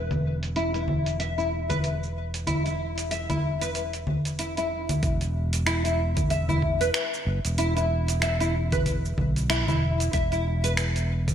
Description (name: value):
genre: organic downtempo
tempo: 94 BPM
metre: 4/4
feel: swing 58% on 16ths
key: unclear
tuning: A4 = 440 Hz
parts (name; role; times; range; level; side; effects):
- sustaining fretless electric bass; bass; 0.0-11.3 s; E1 to B1; -28 LUFS; equal; wide subtle chorus, sidechain pumping
- dusty soul sampler-style drum kit; drums; 0.1-11.3 s; cabasa, congas, finger snaps, hi-hat; -29 LUFS; equal; overdrive, gated reverb
- nylon-string guitar; arpeggios; 0.6-10.7 s; E4 to E5; -28 LUFS; left 1 dB; analog chorus, ping-pong delay
- electronic kick drum; drums; 5.0-11.3 s; none; -29 LUFS; equal; overdrive
room: moderate plate reverb, RT60 1.7 s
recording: bright 1980s-style digital production, low-pass filter, faint mains hum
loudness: -23 LUFS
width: side -9 dB against mid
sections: 0.0-5.0 A section; 5.0-11.3 B section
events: none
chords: 0.0 E5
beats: 0.56 1.20 1.84 | 2.48 3.12 3.75 4.39 | 5.03 5.67 6.31 6.94 | 7.58 8.22 8.86 9.50 | 10.14 10.77